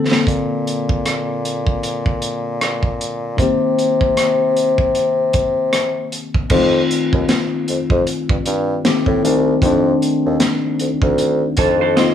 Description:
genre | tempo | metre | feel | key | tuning
R&B, neo-soul | 77 BPM | 4/4 | swing 59% on 16ths | unclear | A4 = 440 Hz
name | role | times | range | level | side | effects
tine electric piano | accompaniment | 0.0-12.1 s | D3 to A4 | -19 LUFS | left 4 dB | none
crunchy breakbeat drum kit | drums | 0.1-12.1 s | crash cymbal, hi-hat, kick drum, rim click, snare drum | -19 LUFS | right 1 dB | none
warm bassoon | bass | 0.3-12.1 s | C2 to C3 | -18 LUFS | left 1 dB | none
electric guitar through a small old amp | second line | 11.6-12.1 s | F4 to Eb5 | -19 LUFS | right 9 dB | none
room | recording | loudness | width
light reverb | small room ambience | -15 LUFS | side -9 dB against mid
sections
0.0-6.5 A section; 6.5-12.1 B section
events
drum fill 0.0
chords
0.0 Bbmaj9; 3.4 Cm7; 6.5 F7

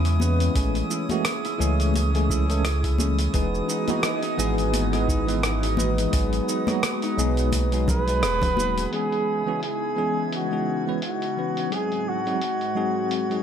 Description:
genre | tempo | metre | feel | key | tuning
sunset chillout | 86 BPM | 4/4 | swing 56% on 16ths | C# minor | A4 = 445 Hz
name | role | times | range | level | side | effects
airy breathy pad | sustained chords | 0.0-13.4 s | G#2 to D#5 | -31 LUFS | left 1 dB | chorus, phaser, shimmer reverb
concert harp | arpeggios | 0.0-11.3 s | B3 to F#5 | -31 LUFS | right 2 dB | ping-pong delay, shimmer reverb
warm sub bass | bass | 0.0-8.9 s | D#1 to E2 | -24 LUFS | equal | none
drifting glass-harmonics texture | texture | 0.0-13.4 s | D#6 to G#6 | -36 LUFS | right 1 dB | chorus, built-in reverb, shimmer reverb
dusty soul sampler-style drum kit | drums | 0.1-13.4 s | cabasa, hi-hat, rim click | -30 LUFS | right 1 dB | low-pass filter on hats, low-pass filter on perc, low-pass filter on snare, low-pass filter on room
bell-like tine electric piano | accompaniment | 0.2-13.4 s | E3 to D#5 | -28 LUFS | moving between left 5 dB and right 5 dB | medium stereo tremolo, auto-pan, ping-pong delay, shimmer reverb
congas | percussion | 0.2-8.7 s | none | -31 LUFS | left 4 dB | none
electronic kick drum | drums | 0.6-8.5 s | none | -26 LUFS | equal | none
trumpet with bucket mute | melody | 7.9-13.4 s | F#4 to B4 | -26 LUFS | right 1 dB | ping-pong delay, shimmer reverb
room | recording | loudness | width
light reverb, digital ambience | none | -21 LUFS | side -8 dB against mid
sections
0.0-8.9 A section; 8.9-13.4 B section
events
band accent 8.2-8.6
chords
0.0 C#m7; 0.6 Amaj7; 3.3 Emaj7; 6.1 G#m7; 8.9 C#m7; 11.7 G#7

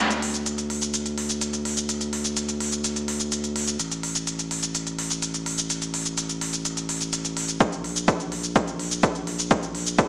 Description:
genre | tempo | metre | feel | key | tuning
EDM, festival progressive house | 126 BPM | 4/4 | straight | unclear | A4 = 440 Hz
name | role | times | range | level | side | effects
saturated sub bass | bass | 0.0-10.1 s | A1 to D2 | -29 LUFS | equal | tube saturation, sidechain pumping
electronic hi-hat and shaker | drums | 0.1-10.1 s | none | -26 LUFS | equal | overdrive, high-pass filter on hats, high-pass filter on snare, high-pass filter on perc, high-pass filter on room
electronic kick drum | drums | 7.6-10.1 s | none | -21 LUFS | equal | overdrive
room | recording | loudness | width
moderate recital hall reverb, RT60 1.3 s | small speaker sound | -23 LUFS | side -27 dB against mid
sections
0.0-10.1 A section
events
build-up 0.0-10.1; drum fill 7.6-10.1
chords
none

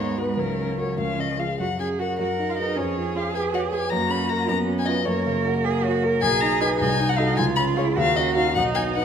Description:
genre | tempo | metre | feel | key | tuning
quick classical-period movement for piano quartet | 103 BPM (dotted quarters) | 6/8 | rubato | F# major | A4 = 437 Hz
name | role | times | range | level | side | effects
warm violin | melody | 0.0-9.0 s | A#4 to B5 | -26 LUFS | left 6 dB | none
rich cello | second line | 0.0-9.0 s | E#3 to A#4 | -27 LUFS | right 7 dB | none
warm concert grand piano | accompaniment | 0.0-9.0 s | B1 to C#5 | -25 LUFS | left 1 dB | none
warm viola | accompaniment | 0.0-9.0 s | A#3 to G#4 | -30 LUFS | right 3 dB | none
room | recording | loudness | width
wet recital hall reverb, RT60 1.7 s | none | -20 LUFS | side -8 dB against mid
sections
0.0-1.6 A section; 1.6-9.0 B section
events
none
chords
0.4 F#/C#; 1.0 C#; 1.6 F#; 2.2 G#m7/F#; 2.8 C#7/E#; 3.9 F#; 4.5 C#7/F#; 5.1 F#; 6.2 G#m/B; 6.8 Cdim7; 7.4 C#; 8.0 D#m7

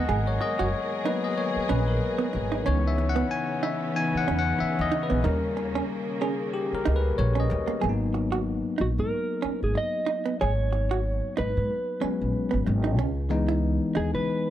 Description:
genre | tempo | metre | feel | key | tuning
R&B, neo-soul | 93 BPM | 4/4 | swing 56% on 16ths | G# minor | A4 = 439 Hz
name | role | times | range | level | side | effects
vintage hollow-body jazz guitar | second line | 0.0-14.1 s | A#3 to G#4 | -31 LUFS | right 7 dB | none
bell-like tine electric piano | accompaniment | 0.0-14.5 s | E3 to A#5 | -28 LUFS | left 4 dB | none
warm studio string section | sustained chords | 0.0-7.8 s | C#3 to A#4 | -34 LUFS | right 1 dB | none
upright bass | bass | 0.0-14.3 s | F#1 to C#3 | -27 LUFS | equal | none
mellow electric guitar | melody | 8.8-14.5 s | F#4 to D#5 | -29 LUFS | right 1 dB | none
room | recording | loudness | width
light reverb, studio reverb | none | -24 LUFS | side -12 dB against mid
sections
0.0-7.8 A section; 7.8-14.5 B section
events
tine electric piano solo 0.0-7.8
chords
0.0 G#m9; 2.7 C#m9; 5.2 D#7; 7.8 G#m9; 13.0 C#m9

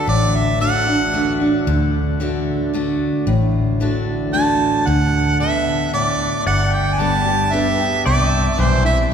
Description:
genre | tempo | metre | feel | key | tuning
country | 113 BPM | 3/4 | straight | D mixolydian | A4 = 439 Hz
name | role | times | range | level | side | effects
warm harmonica | second line | 0.0-1.4, 4.3-9.0 s | C5 to A5 | -20 LUFS | right 3 dB | none
picked steel-string acoustic guitar | accompaniment | 0.0-9.1 s | G2 to G4 | -20 LUFS | equal | none
pedal steel guitar | sustained chords | 0.0-9.1 s | D5 to G5 | -29 LUFS | left 3 dB | none
vintage muted fingered electric bass | bass | 0.1-9.0 s | G1 to D2 | -20 LUFS | equal | none
room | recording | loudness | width
wet cathedral reverb, RT60 5.9 s | recorded in a church or concert hall | -15 LUFS | side -7 dB against mid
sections
0.0-9.1 A section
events
harmonica solo 0.0-9.1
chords
0.0 D; 6.5 G; 8.1 C

